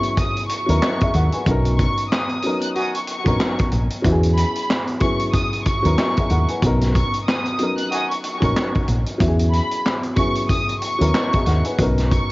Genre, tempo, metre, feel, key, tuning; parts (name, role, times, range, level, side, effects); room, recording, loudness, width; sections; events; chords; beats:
hip hop, boom-bap hip-hop; 93 BPM; 4/4; swing 59% on 16ths; B major; A4 = 440 Hz
warm studio violin section; melody; 0.0-12.3 s; B5 to F#6; -25 LUFS; equal; high-pass filter, low-pass filter, cassette tape, tape echo
warm upright piano; accompaniment; 0.0-12.3 s; F#3 to G#5; -24 LUFS; left 1 dB; high-pass filter, low-pass filter, cassette tape
vintage drum kit; drums; 0.0-12.3 s; handclaps, hi-hat, kick drum, snare drum; -22 LUFS; equal; cassette tape
deep dub fingered electric bass; bass; 0.7-12.2 s; A#1 to E2; -18 LUFS; equal
mellow horn section; stabs; 2.7-3.0, 7.9-8.1 s; D#3 to F#4; -30 LUFS; equal; high-pass filter, low-pass filter, cassette tape, tape echo
small room ambience; home recording on cassette, vinyl crackle, nothing above 7.6 kHz; -17 LUFS; side -20 dB against mid
0.0-12.3 A section
0.0 E69; 1.5 Bmaj9; 4.0 E69; 6.6 Bmaj9; 9.2 E69; 11.8 Bmaj9
0.17 0.82 | 1.46 2.11 2.75 3.40 | 4.04 4.69 5.33 5.98 | 6.62 7.27 7.91 8.56 | 9.21 9.85 10.49 11.14 | 11.79